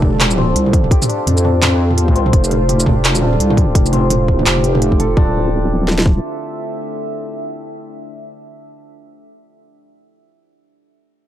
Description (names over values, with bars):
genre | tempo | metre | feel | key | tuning
half-time drum and bass | 169 BPM | 4/4 | swing 59% on 16ths, half-time | D minor | A4 = 440 Hz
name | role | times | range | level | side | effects
deep dark ambient pad | sustained chords | 0.0-8.8 s | D4 to E5 | -22 LUFS | equal | chorus, built-in reverb, sidechain pumping
santur | arpeggios | 0.0-8.9 s | C4 to A4 | -23 LUFS | equal | tape echo
deep soft wobble bass | bass | 0.0-6.2 s | D1 to F2 | -15 LUFS | equal | chorus
industrial drum kit | drums | 0.0-5.1 s | handclaps, hi-hat, shaker, toms | -18 LUFS | right 1 dB | none
trap drum kit | drums | 0.0-6.2 s | kick drum, snare drum | -13 LUFS | equal | none
room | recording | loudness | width
little or no reverb | dry, gritty hardware recording, transformer saturation | -12 LUFS | side -12 dB against mid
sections
0.0-5.2 A section; 5.2-8.0 B section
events
drop 0.0-5.2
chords
0.0 F; 5.2 Dsus2